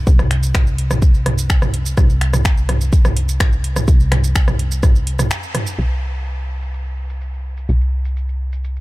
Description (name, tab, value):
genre	melodic techno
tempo	126 BPM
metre	4/4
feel	straight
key	unclear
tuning	A4 = 440 Hz
part	plucky analog bass	bass	0.0-8.8 s	C2	-19 LUFS	equal	sidechain pumping
part	electronic kick drum	drums	0.1-4.9 s	none	-13 LUFS	equal	none
part	house drum kit	drums	0.1-8.8 s	finger snaps, hi-hat, rim click, shaker, toms	-21 LUFS	right 1 dB	low-pass filter on hats, low-pass filter on snare, low-pass filter on toms, low-pass filter on perc, low-pass filter on room
room	little or no reverb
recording	none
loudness	-14 LUFS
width	side -19 dB against mid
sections	0.0-5.8 A section; 5.8-8.8 B section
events	break 5.3-5.8; band accent 5.3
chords	none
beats	| 0.07 0.55 1.02 1.50 | 1.98 2.45 2.93 3.40 | 3.88 4.36 4.83 5.31 | 5.78 6.26 6.74 7.21 | 7.69 8.16 8.64